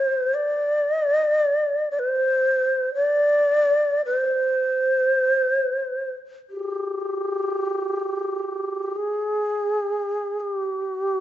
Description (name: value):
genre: japanese traditional, Japanese chamber music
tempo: free time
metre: none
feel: none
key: unclear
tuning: A4 = 437 Hz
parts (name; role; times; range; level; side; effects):
- breathy long shakuhachi; solo; 0.0-11.2 s; G4 to D5; -20 LUFS; equal; none
room: light reverb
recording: nothing above 7.8 kHz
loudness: -20 LUFS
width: side -12 dB against mid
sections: 0.0-11.2 A section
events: none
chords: none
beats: free time